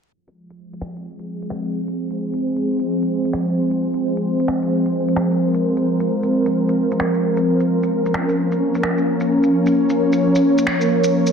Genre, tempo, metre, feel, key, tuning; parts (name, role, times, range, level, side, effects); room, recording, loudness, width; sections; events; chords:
future garage; 131 BPM; 4/4; swing 63% on 16ths; A4 = 440 Hz
ethereal airy pad; sustained chords; 0.7-11.3 s; F3 to Db5; -17 LUFS; equal; ensemble chorus, built-in reverb
electronic shaker and finger snaps; drums; 0.3-11.3 s; -29 LUFS; equal; low-pass filter on perc, studio reverb, soft clipping on snare, low-pass filter on snare
moderate lush hall reverb, RT60 1.9 s, digital ambience; dense, heavily limited modern master, vinyl crackle, low-pass filter; -16 LUFS; side -6 dB against mid
0.1-11.3 A section
fade-in on ambient pad 0.1-11.3; filter sweep on drum 0.1-11.3; filter sweep 0.1-11.3
0.1 Fm; 7.5 Bbm